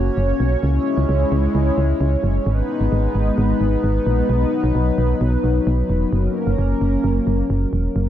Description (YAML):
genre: synth-pop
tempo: 131 BPM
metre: 4/4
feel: straight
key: unclear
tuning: A4 = 439 Hz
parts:
  - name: chorused pulse-width pad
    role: sustained chords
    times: 0.0-8.1 s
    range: F#3 to C#5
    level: -20 LUFS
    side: left 1 dB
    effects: none
  - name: solid FM bass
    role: bass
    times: 0.0-8.1 s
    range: E1 to C#2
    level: -18 LUFS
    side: equal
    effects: none
room: light reverb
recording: none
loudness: -16 LUFS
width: side -11 dB against mid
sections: 0.0-8.0 A section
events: none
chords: 0.0 F#; 0.6 C#m; 2.5 G#m; 4.3 B; 6.1 F#